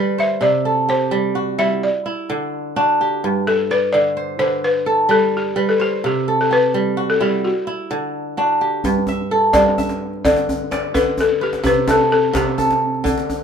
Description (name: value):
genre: west african traditional, West African string and xylophone music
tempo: 86 BPM (dotted quarters)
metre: 12/8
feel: straight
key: G major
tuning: A4 = 441 Hz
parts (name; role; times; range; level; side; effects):
- balafon; melody; 0.0-12.8 s; F#4 to E5; -18 LUFS; left 2 dB; none
- kora; arpeggios; 0.0-13.4 s; G2 to E5; -18 LUFS; right 2 dB; none
- djembe; percussion; 8.8-13.4 s; none; -23 LUFS; left 1 dB; none
room: light reverb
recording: minimal, uncompressed stereo recording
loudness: -16 LUFS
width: side -7 dB against mid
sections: 0.0-8.8 A section; 8.8-13.4 B section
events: none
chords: 0.4 C; 1.8 D; 3.2 G; 6.0 C; 7.4 D; 8.8 G; 11.6 C5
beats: | 0.42 1.12 1.82 2.52 | 3.23 3.93 4.63 5.33 | 6.04 6.74 7.44 8.14 | 8.84 9.54 10.24 10.94 | 11.64 12.34 13.04